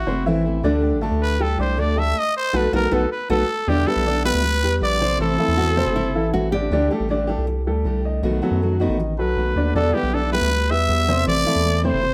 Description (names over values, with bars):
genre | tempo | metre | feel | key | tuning
latin | 158 BPM | 4/4 | straight | E minor | A4 = 440 Hz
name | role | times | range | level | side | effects
growling trumpet | melody | 0.0-6.3, 9.2-12.1 s | F#4 to E5 | -24 LUFS | equal | plate reverb
rubbery square bass | bass | 0.0-12.1 s | F#1 to F#2 | -25 LUFS | equal | none
fingerpicked steel-string acoustic guitar | accompaniment | 0.1-12.1 s | B2 to G4 | -28 LUFS | equal | none
warm grand piano | arpeggios | 0.1-12.1 s | C3 to D6 | -26 LUFS | equal | none
nylon-string guitar | second line | 5.6-7.2 s | E4 to G4 | -28 LUFS | equal | none
room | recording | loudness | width
light reverb | none | -20 LUFS | mono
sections
0.0-3.7 A section; 3.7-12.1 B section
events
trumpet solo 0.0-3.7; band accent 2.2-3.7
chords
0.0 Am; 0.6 Dsus4; 2.2 B7; 3.7 Em7; 5.2 Am; 6.7 Dsus4; 8.2 B7; 9.8 Em7; 11.3 Am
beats
0.26 | 0.64 1.02 1.40 1.78 | 2.16 2.54 2.92 3.30 | 3.68 4.06 4.44 4.82 | 5.20 5.58 5.96 6.33 | 6.71 7.09 7.47 7.85 | 8.23 8.61 8.99 9.37 | 9.75 10.13 10.51 10.89 | 11.27 11.65 12.03